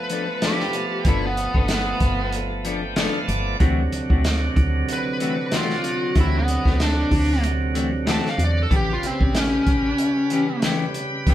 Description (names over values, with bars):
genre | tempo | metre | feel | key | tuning
straight-eighth soul blues | 94 BPM | 4/4 | swing 56% on 16ths | D mixolydian | A4 = 440 Hz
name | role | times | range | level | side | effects
smooth overdriven lead guitar | melody | 0.0-10.6 s | B3 to A5 | -24 LUFS | left 1 dB | none
bright tonewheel organ | accompaniment | 0.0-11.3 s | C3 to G5 | -26 LUFS | right 3 dB | slow rotary speaker, overdrive
clean electric guitar | stabs | 0.1-11.3 s | E3 to A4 | -28 LUFS | left 5 dB | none
crunchy breakbeat drum kit | drums | 0.1-11.3 s | hi-hat, kick drum, snare drum | -23 LUFS | equal | none
woody FM bass | bass | 1.1-11.3 s | G1 to E2 | -24 LUFS | equal | none
room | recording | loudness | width
moderate stone room reverb, RT60 1.1 s | band playing live in one room | -19 LUFS | side -12 dB against mid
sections
0.0-11.3 A section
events
tonewheel organ fill 2.3-3.6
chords
0.0 G9; 3.6 D9; 8.7 A9